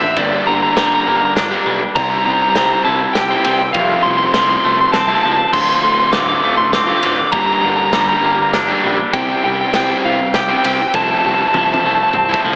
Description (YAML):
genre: post-rock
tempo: 100 BPM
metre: 3/4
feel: straight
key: unclear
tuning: A4 = 440 Hz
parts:
  - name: lightly driven lead guitar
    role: melody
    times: 0.0-12.4 s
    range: D5 to D6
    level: -15 LUFS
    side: equal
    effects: digital delay
  - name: twangy electric guitar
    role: arpeggios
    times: 0.0-12.6 s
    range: D2 to G4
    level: -20 LUFS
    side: equal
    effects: slapback echo, digital delay
  - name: fuzz guitar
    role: riff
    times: 0.0-12.6 s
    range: D2 to C5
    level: -19 LUFS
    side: equal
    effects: distortion, slapback echo
  - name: growling fingered electric bass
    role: bass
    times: 0.0-12.6 s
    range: D1 to C#2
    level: -26 LUFS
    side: equal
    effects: overdrive
  - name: loose indie drum kit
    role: drums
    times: 0.2-12.6 s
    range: crash cymbal, kick drum, ride cymbal, snare drum, toms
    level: -21 LUFS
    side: equal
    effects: none
room: wet lush hall reverb, RT60 2.1 s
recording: big arena sound, AM radio sound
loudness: -12 LUFS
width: side -28 dB against mid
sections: 0.0-12.6 A section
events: drum fill 11.5-12.6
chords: 0.2 Gm; 2.0 C7; 3.8 Fmaj7/C; 5.5 Dm7; 7.3 Gm; 9.1 C; 10.9 Fmaj7/C